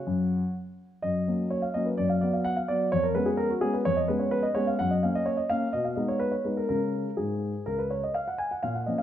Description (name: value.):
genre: classical-period piano sonatina.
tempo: 127 BPM.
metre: 4/4.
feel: straight.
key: F# major.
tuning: A4 = 436 Hz.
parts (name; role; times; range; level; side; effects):
warm concert grand piano; solo; 0.0-9.0 s; C#2 to G#5; -25 LUFS; equal; none.
room: wet recital hall reverb, RT60 1.4 s.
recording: none.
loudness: -25 LUFS.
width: side -11 dB against mid.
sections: 0.0-1.0 A section; 1.0-9.0 A section.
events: none.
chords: 0.0 F#5; 1.0 F#; 2.0 B5/F#; 2.9 C#7/E#; 4.8 F#; 5.7 G#m/B; 6.7 C#5.